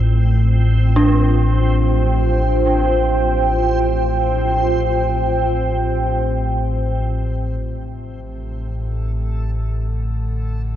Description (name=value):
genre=dark ambient drone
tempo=free time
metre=none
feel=none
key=unclear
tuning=A4 = 440 Hz
part: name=deep dark ambient pad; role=sustained chords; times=0.0-7.6 s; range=F4 to G5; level=-20 LUFS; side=right 1 dB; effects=chorus, built-in reverb
part: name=dark detuned synth bell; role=arpeggios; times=0.0-7.8 s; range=D4 to A4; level=-23 LUFS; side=equal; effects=chorus, tape echo
part: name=deep rumbling drone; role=drone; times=0.0-10.8 s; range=A1 to A2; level=-18 LUFS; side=equal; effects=built-in reverb, phaser
part: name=backwards swelling texture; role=texture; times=0.0-10.8 s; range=C4 to A4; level=-32 LUFS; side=right 2 dB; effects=built-in reverb
part: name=warm bass clarinet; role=melody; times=7.6-10.8 s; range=C3 to D3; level=-41 LUFS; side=right 1 dB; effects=none
room=wet cathedral reverb, RT60 6.1 s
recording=dark, warm production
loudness=-16 LUFS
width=side -11 dB against mid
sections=0.0-7.6 A section; 7.6-10.8 B section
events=fade-out on synth texture 0.0-7.6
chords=0.0 F; 7.6 N.C.